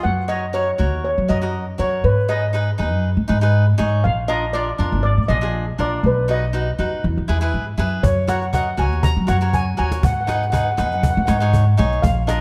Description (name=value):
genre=calypso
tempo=120 BPM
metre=4/4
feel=swing 54% on 16ths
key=F# major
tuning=A4 = 440 Hz
part: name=steel pan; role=melody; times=0.0-12.4 s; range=B4 to A#5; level=-25 LUFS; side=equal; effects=none
part: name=cavaquinho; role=accompaniment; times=0.0-12.4 s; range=D4 to D#5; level=-28 LUFS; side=equal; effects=none
part: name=upright bass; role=bass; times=0.0-12.4 s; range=G#1 to F#3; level=-22 LUFS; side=equal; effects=none
part: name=cajon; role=drums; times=8.0-12.4 s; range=none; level=-25 LUFS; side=equal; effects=none
room=light reverb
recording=dark, warm production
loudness=-19 LUFS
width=mono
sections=0.0-12.4 A section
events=none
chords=0.0 F#; 2.0 G#m; 4.0 A#7; 6.0 B; 7.0 E; 8.0 F#; 10.0 G#m7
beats=| 0.04 0.54 1.04 1.54 | 2.04 2.54 3.04 3.54 | 4.04 4.54 5.04 5.54 | 6.04 6.54 7.04 7.54 | 8.04 8.54 9.04 9.54 | 10.04 10.54 11.04 11.54 | 12.04